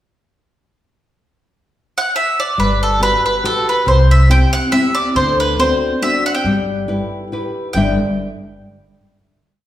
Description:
italian folk; 140 BPM; 3/4; swing 55% on 8ths; G major; A4 = 440 Hz
bowl-back mandolin; melody; 2.0-8.0 s; A4 to G5; -16 LUFS; equal
nylon-string guitar; accompaniment; 2.6-8.0 s; G2 to E5; -18 LUFS; left 1 dB
upright bass; bass; 2.6-8.0 s; G1 to D2; -17 LUFS; equal
wet recital hall reverb, RT60 1.4 s; recorded in a church or concert hall; -13 LUFS; side -12 dB against mid
1.3-2.6 pickup bar; 2.6-7.7 A section; 7.7-9.0 final chord
1.3 N.C.; 2.6 Gmaj7; 3.9 C; 5.2 D7; 6.4 G6

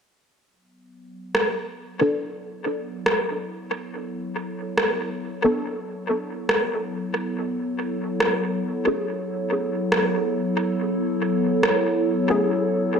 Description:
ambient dub; 70 BPM; 4/4; swing 56% on 16ths; A4 = 441 Hz
warbly tape-like pad; sustained chords; 0.9-13.0 s; F#3 to C#5; -25 LUFS; equal; chorus, built-in reverb, phaser
electronic rim click; drums; 1.3-11.8 s; -24 LUFS; equal; overdrive, dub echo
filtered dub chord stab; stabs; 2.0-12.6 s; A3 to A4; -24 LUFS; left 1 dB; phaser, ensemble chorus, cassette tape, dub echo
moderate plate reverb, RT60 2.0 s; echo-heavy mix; -22 LUFS; side -6 dB against mid
0.5-13.0 A section
fade-in on ambient pad 0.5-13.0; filter sweep on synth stab 0.5-13.0
0.5 B7(no3); 7.3 A

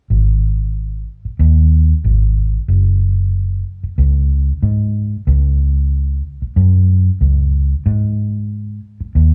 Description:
blues; 93 BPM; 4/4; swing 55% on 16ths; A4 = 442 Hz
vintage muted fingered electric bass; bass; 0.1-9.3 s; F#1 to G#2; -15 LUFS; equal
moderate large studio reverb, RT60 1.4 s; band playing live in one room; -15 LUFS; mono
0.1-9.3 A section

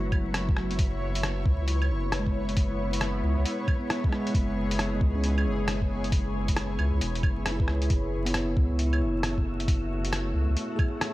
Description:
future garage; 135 BPM; 4/4; swing 64% on 16ths; A4 = 440 Hz
bell-like tine electric piano; accompaniment; 0.0-11.1 s; F#3 to B4; -32 LUFS; equal; sidechain pumping, tape echo
granular cloud pad; sustained chords; 0.0-11.1 s; F#3 to C#5; -34 LUFS; left 1 dB; built-in reverb, sidechain pumping
soft dub sub bass; bass; 0.0-10.6 s; E1 to C#2; -28 LUFS; equal; sidechain pumping
wind-like tuned noise texture; texture; 0.0-11.1 s; B3 to E5; -41 LUFS; equal; built-in reverb
electronic kick drum; drums; 0.1-10.9 s; -26 LUFS; equal; studio reverb
lo-fi sampler-style drum kit; drums; 0.1-11.1 s; claves, hi-hat, rim click; -32 LUFS; equal; studio reverb
light reverb; vinyl crackle; -24 LUFS; side -17 dB against mid
0.0-11.1 A section
0.0 F#m7; 0.8 C#m7/F#; 7.9 F#m7

